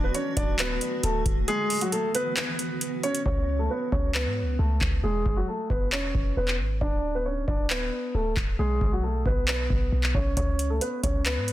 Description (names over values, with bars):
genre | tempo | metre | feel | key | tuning
hip hop, trap | 135 BPM | 4/4 | half-time | C# phrygian | A4 = 443 Hz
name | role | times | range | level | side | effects
warm concert grand piano | melody | 0.0-11.5 s | F#3 to D5 | -28 LUFS | equal | low-pass filter, digital delay
granular cloud pad | sustained chords | 0.0-3.2 s | D3 to F#4 | -35 LUFS | right 1 dB | built-in reverb
clean 808-style bass | bass | 0.0-11.5 s | D1 to G#2 | -28 LUFS | equal | none
booming analog drum machine | drums | 0.1-11.5 s | handclaps, hi-hat, kick drum | -27 LUFS | equal | none
room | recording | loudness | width
digital ambience | dense, heavily limited modern master | -24 LUFS | side -14 dB against mid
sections
0.0-3.3 A section; 3.3-11.5 B section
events
kick muted 1.5-3.3; hi-hats muted 3.3-10.4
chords
0.0 D; 1.5 Bsus4; 3.3 C#5; 5.0 E; 6.8 D5; 8.6 B5; 10.4 C#5